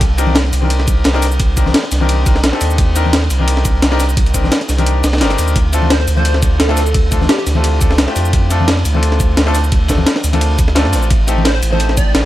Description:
liquid drum and bass; 173 BPM; 4/4; swing 54% on 16ths; A4 = 439 Hz
saturated sub bass; bass; 0.0-12.3 s; G1 to G2; -15 LUFS; equal
breakbeat sampler-style drum kit; drums; 0.0-12.2 s; hi-hat, shaker, snare drum; -18 LUFS; equal
crunchy breakbeat drum kit; drums; 0.0-12.2 s; ride cymbal, snare drum; -22 LUFS; equal; high-pass filter on cymbals, high-pass filter on snare, high-pass filter on room
electronic kick drum; drums; 0.0-12.1 s; -14 LUFS; equal; overdrive
bright grand piano; accompaniment; 0.2-12.2 s; A3 to Bb4; -20 LUFS; left 2 dB; digital delay
congas; percussion; 0.3-11.8 s; -23 LUFS; left 5 dB
plucky unison lead; melody; 5.9-7.4, 11.5-12.2 s; G4 to D5; -21 LUFS; equal; phaser, digital delay
little or no reverb; -11 LUFS; side -15 dB against mid
0.0-12.3 A section
kick drops out 4.9-5.6
0.0 Cm7; 5.6 Dm7; 11.1 Am7b5
| 0.01 0.36 0.70 1.05 | 1.40 1.75 2.09 2.44 | 2.79 3.13 3.48 3.83 | 4.17 4.52 4.87 5.21 | 5.56 5.91 6.25 6.60 | 6.95 7.29 7.64 7.99 | 8.33 8.68 9.03 9.38 | 9.72 10.07 10.41 10.76 | 11.11 11.46 11.80 12.15

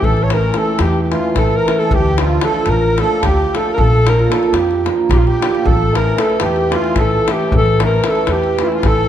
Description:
balkan folk, Balkan wedding band; 224 BPM (eighths); 7/8; straight; A phrygian dominant; A4 = 439 Hz
mellow alto saxophone; melody; 0.0-9.1 s; E4 to C#5; -19 LUFS; left 3 dB
musette accordion; second line; 0.0-9.1 s; E4 to C#5; -22 LUFS; right 4 dB
cimbalom; accompaniment; 0.0-9.1 s; E3 to Bb4; -18 LUFS; right 4 dB
upright bass; bass; 0.0-9.0 s; A1 to F2; -18 LUFS; equal
davul; percussion; 0.0-9.0 s; -20 LUFS; left 2 dB
moderate recital hall reverb, RT60 1.4 s; dark, warm production; -12 LUFS; side -10 dB against mid
0.0-9.1 A section
0.0 A; 1.9 Dm; 3.8 Bb; 5.7 A
| 0.03 0.29 0.56 0.83 1.10 1.37 1.64 | 1.91 2.18 2.45 2.71 2.98 3.25 3.52 | 3.79 4.05 4.32 4.59 4.86 5.12 5.39 | 5.66 5.92 6.19 6.46 6.72 6.99 7.25 | 7.52 7.79 8.05 8.32 8.59 8.85

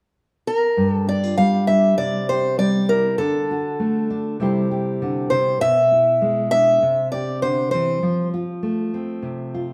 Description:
acoustic folk duo or small band; 100 BPM; 4/4; straight; A4 = 440 Hz
picked acoustic archtop guitar; melody; 0.5-8.3 s; A4 to F5; -21 LUFS; equal
nylon-string guitar; accompaniment; 0.8-9.7 s; G2 to C5; -24 LUFS; equal
moderate large studio reverb, RT60 1.3 s; -20 LUFS; mono
0.8-9.7 A section
0.0 N.C.; 0.8 G5; 2.0 C; 3.2 D; 4.4 Cadd9; 5.6 E7/B; 6.8 C; 8.0 F
0.18 | 0.78 1.39 1.99 2.59 | 3.20 3.80 4.40 5.01 | 5.61 6.21 6.82 7.42 | 8.02 8.62 9.23

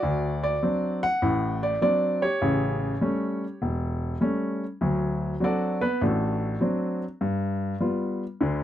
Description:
solo jazz; 100 BPM; 4/4; swing 66% on 8ths; D major; A4 = 440 Hz
warm baby grand piano; solo; 0.0-8.6 s; E1 to F#5; -24 LUFS; equal
light reverb; dry, close 1970s-style studio recording; -24 LUFS; side -11 dB against mid
0.0-4.8 A section; 4.8-8.6 B section
grand piano solo 4.8-8.6
0.0 D7; 2.4 A7; 4.8 D7; 7.2 G7
| 0.01 0.61 1.21 1.81 | 2.41 3.01 3.61 4.21 | 4.81 5.41 6.01 6.61 | 7.21 7.81 8.41

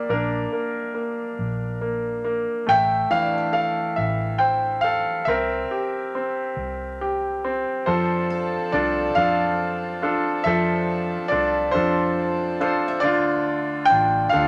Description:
acoustic folk-pop ballad; 46 BPM (dotted quarters); 6/8; straight; F major; A4 = 441 Hz
bright concert grand piano; melody; 0.0-14.5 s; D3 to G5; -23 LUFS; equal
vintage muted fingered electric bass; bass; 0.1-14.5 s; A1 to F2; -32 LUFS; equal
picked steel-string acoustic guitar; arpeggios; 3.1-14.5 s; D4 to E5; -37 LUFS; equal
pedal harmonium; sustained chords; 7.9-14.5 s; D3 to A4; -33 LUFS; equal
moderate studio ambience, RT60 0.5 s; -23 LUFS; mono
0.0-7.9 A section; 7.9-14.5 B section
0.0 Bb; 2.7 Fmaj13/A; 5.3 C7; 7.9 F6; 13.0 Dmadd9
| 0.10 1.40 | 2.69 3.98 | 5.27 6.57 | 7.87 9.16 | 10.46 11.75 | 13.04 14.33

